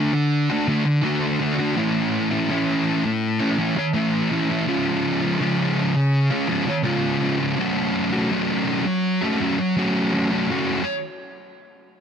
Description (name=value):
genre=rock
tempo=82 BPM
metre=4/4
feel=straight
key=F# minor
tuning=A4 = 440 Hz
part: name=thick fuzz guitar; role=solo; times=0.0-10.8 s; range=F#2 to F#4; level=-19 LUFS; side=equal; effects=distortion
room=light reverb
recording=dense, heavily limited modern master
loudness=-19 LUFS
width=side -7 dB against mid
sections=0.0-10.5 A section; 10.5-12.0 B section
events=none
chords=0.0 D; 1.8 A; 4.7 C#; 7.6 F#m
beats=0.31 1.04 | 1.77 2.49 3.22 3.95 | 4.68 5.40 6.13 6.86 | 7.59 8.32 9.04 9.77 | 10.50